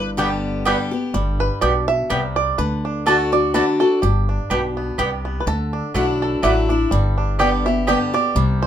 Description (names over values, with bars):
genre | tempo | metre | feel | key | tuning
bluegrass | 125 BPM | 3/4 | swing 55% on 8ths | G major | A4 = 442 Hz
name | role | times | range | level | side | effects
picked steel-string acoustic guitar | accompaniment | 0.0-8.7 s | G2 to G4 | -22 LUFS | left 3 dB | none
upright bass | bass | 0.0-8.7 s | G1 to D2 | -22 LUFS | equal | none
bluegrass banjo | melody | 0.2-8.7 s | G3 to E5 | -23 LUFS | right 5 dB | none
mandolin | stabs | 0.2-8.0 s | A3 to A5 | -20 LUFS | right 1 dB | none
room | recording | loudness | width
moderate studio ambience, RT60 0.5 s | minimal, uncompressed stereo recording | -17 LUFS | side -10 dB against mid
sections
0.0-1.1 A section; 1.1-8.7 B section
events
five-string banjo solo 1.1-8.7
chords
0.0 G; 2.6 D; 4.0 G; 5.5 Dadd9; 6.9 G